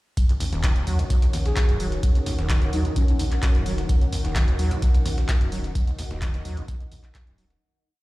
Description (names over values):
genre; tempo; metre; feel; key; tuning
acid house; 129 BPM; 4/4; straight; Eb minor; A4 = 439 Hz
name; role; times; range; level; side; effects
warm analog pad; sustained chords; 0.3-7.6 s; Eb3 to Gb4; -35 LUFS; left 1 dB; chorus, sidechain pumping
warm sub bass; bass; 0.2-7.6 s; Eb1 to Eb2; -26 LUFS; equal; sidechain pumping
breakbeat sampler-style drum kit; drums; 0.2-7.6 s; hi-hat, snare drum, tambourine; -41 LUFS; left 1 dB; high-pass filter on perc, high-pass filter on snare, high-pass filter on hats, high-pass filter on room
electronic kick drum; drums; 0.2-7.2 s; none; -22 LUFS; equal; none
punchy analog drum machine; drums; 0.2-7.6 s; handclaps, hi-hat; -34 LUFS; equal; none
granular cloud pad; texture; 0.9-7.6 s; Eb4 to Gb5; -36 LUFS; equal; built-in reverb, sidechain pumping
overdriven acid bass; riff; 0.3-7.4 s; Eb1 to Gb3; -29 LUFS; equal; tube saturation, lush chorus, sidechain pumping, digital delay
breathy flute-like synth lead; melody; 1.5-3.2 s; Db4 to Ab4; -33 LUFS; left 1 dB; lush chorus, dub echo
room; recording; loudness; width
little or no reverb; played on a big sound system in a bare room, large studio reverb; -20 LUFS; side -19 dB against mid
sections
0.2-7.6 groove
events
fade-out 5.1-7.6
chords
0.2 Ebm7